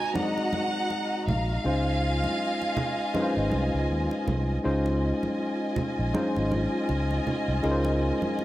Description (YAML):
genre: lush 1970s-style soul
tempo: 80 BPM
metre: 4/4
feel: swing 58% on 16ths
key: unclear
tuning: A4 = 439 Hz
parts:
  - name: warm symphonic violin section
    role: melody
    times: 0.0-4.2 s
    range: F5 to Ab5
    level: -31 LUFS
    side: right 1 dB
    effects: none
  - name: warm studio string section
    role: second line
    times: 0.0-8.4 s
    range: F4 to Bb5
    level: -32 LUFS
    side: equal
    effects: none
  - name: tine electric piano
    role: accompaniment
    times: 0.0-8.4 s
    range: Ab3 to Eb5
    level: -28 LUFS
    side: left 1 dB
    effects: none
  - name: congas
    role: percussion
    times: 0.2-8.4 s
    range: none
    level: -34 LUFS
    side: right 2 dB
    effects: none
  - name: fingered electric bass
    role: bass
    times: 1.3-8.3 s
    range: Ab1 to Eb2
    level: -28 LUFS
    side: equal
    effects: none
room: light reverb, small room ambience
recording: none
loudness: -24 LUFS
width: side -15 dB against mid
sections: 0.0-4.6 A section; 4.6-8.4 B section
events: none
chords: 0.0 Ab7; 1.6 Dbmaj9